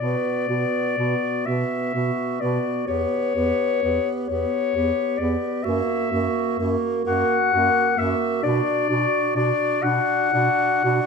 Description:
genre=classical, lyrical piece for single-reed quartet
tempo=38-45 BPM (dotted quarters)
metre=6/8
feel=rubato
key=B minor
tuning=A4 = 441 Hz
part: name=clear clarinet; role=melody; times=0.0-11.1 s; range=C#5 to F#5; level=-23 LUFS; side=left 7 dB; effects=none
part: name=mellow clarinet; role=second line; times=0.0-11.1 s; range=F#4 to G4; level=-28 LUFS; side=right 11 dB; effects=none
part: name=clear tenor saxophone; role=accompaniment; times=0.0-11.1 s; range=A#3 to D4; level=-26 LUFS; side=equal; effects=none
part: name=warm bass clarinet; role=bass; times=0.0-11.0 s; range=E2 to B2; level=-28 LUFS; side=right 2 dB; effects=none
room=wet recital hall reverb, RT60 1.4 s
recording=none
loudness=-20 LUFS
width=side -5 dB against mid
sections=0.0-11.1 A section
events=none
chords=0.0 Bm; 2.9 Em; 5.7 F#; 8.4 Bm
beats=1.47 | 2.88 4.30 | 5.65 7.08 | 8.45 9.84

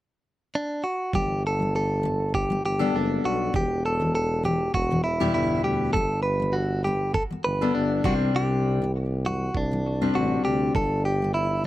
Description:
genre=acoustic pop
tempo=100 BPM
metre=4/4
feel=swing 55% on 16ths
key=G major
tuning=A4 = 440 Hz
part: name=direct-recorded clean electric guitar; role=melody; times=0.6-11.6 s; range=D4 to B4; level=-26 LUFS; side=right 1 dB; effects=none
part: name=fingerpicked steel-string acoustic guitar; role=accompaniment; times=1.1-11.7 s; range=E2 to A4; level=-27 LUFS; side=left 3 dB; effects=none
part: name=mellow tuba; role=bass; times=1.1-11.7 s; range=E1 to D2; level=-28 LUFS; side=right 1 dB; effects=none
part: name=electronic kick drum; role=drums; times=1.1-10.9 s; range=none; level=-29 LUFS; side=right 2 dB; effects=overdrive
room=little or no reverb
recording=close, detailed microphones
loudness=-22 LUFS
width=side -15 dB against mid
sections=0.0-1.1 A section; 1.1-11.7 B section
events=none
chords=0.0 N.C.; 1.1 Gadd9; 3.5 Em; 5.9 Gadd9; 8.0 Csus2; 10.7 Gadd9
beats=0.54 | 1.14 1.74 2.34 2.94 | 3.54 4.14 4.74 5.34 | 5.94 6.54 7.14 7.74 | 8.34 8.94 9.54 10.14 | 10.74 11.35

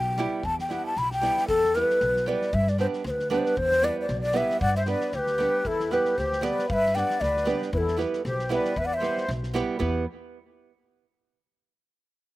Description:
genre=balkan folk, Balkan wedding band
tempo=116 BPM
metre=2/4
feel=swing 55% on 16ths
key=E minor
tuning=A4 = 440 Hz
part: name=breathy mellow ney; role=melody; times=0.0-9.3 s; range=A4 to B5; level=-25 LUFS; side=left 1 dB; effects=slapback echo
part: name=upright bass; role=bass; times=0.0-10.0 s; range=B1 to G2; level=-30 LUFS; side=equal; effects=none
part: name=nylon-string guitar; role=accompaniment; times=0.2-10.0 s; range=G3 to B4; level=-29 LUFS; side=right 4 dB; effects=slapback echo
part: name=loose indie drum kit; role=percussion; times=0.2-10.0 s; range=kick drum, snare drum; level=-39 LUFS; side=equal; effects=none
part: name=accordion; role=second line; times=4.6-9.3 s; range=E4 to D5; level=-32 LUFS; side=left 2 dB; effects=light tremolo tuning, slapback echo
room=little or no reverb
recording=recorded outdoors, with no room sound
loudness=-23 LUFS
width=side -17 dB against mid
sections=0.0-1.5 A section; 1.5-9.8 B section; 9.8-10.8 C section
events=ney solo 0.0-1.5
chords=0.0 Em; 2.5 G; 3.6 Em; 4.6 G; 5.7 Em; 6.7 G; 7.7 Em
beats=| 0.45 0.97 | 1.49 2.01 | 2.54 3.06 | 3.58 4.09 | 4.62 5.13 | 5.65 6.17 | 6.69 7.21 | 7.73 8.25 | 8.77 9.29 | 9.80

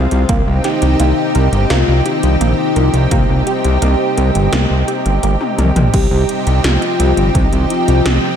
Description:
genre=synthwave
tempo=85 BPM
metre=4/4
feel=straight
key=C minor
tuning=A4 = 440 Hz
part: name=lush unison pad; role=sustained chords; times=0.0-8.4 s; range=C3 to G4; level=-18 LUFS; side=equal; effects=chorus, sidechain pumping
part: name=analog pluck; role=arpeggios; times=0.0-5.8 s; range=Bb3 to C5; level=-24 LUFS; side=right 2 dB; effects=chorus, phaser, vintage 12-bit sampler grit, ping-pong delay
part: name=fat analog bass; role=bass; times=0.0-8.2 s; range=G1 to C2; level=-14 LUFS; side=equal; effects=tube saturation
part: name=80s electronic pad drums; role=drums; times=0.1-8.2 s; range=crash cymbal, hi-hat, snare drum, toms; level=-21 LUFS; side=equal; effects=gated reverb on snare and toms
part: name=electronic kick drum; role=drums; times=0.3-7.5 s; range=none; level=-16 LUFS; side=equal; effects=none
part: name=soft octave-layered synth lead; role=melody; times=0.6-8.4 s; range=Eb4 to G4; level=-19 LUFS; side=left 2 dB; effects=chorus, phaser, analog delay
room=moderate lush hall reverb, RT60 1.8 s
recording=dreamy mix soaked in reverb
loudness=-11 LUFS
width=side -8 dB against mid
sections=0.0-5.9 A section; 5.9-8.4 B section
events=drum fill 5.4-5.9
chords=0.3 Eb; 5.9 Cm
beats=| 0.29 1.00 1.70 2.41 | 3.11 3.82 4.53 5.23 | 5.94 6.64 7.35 8.05

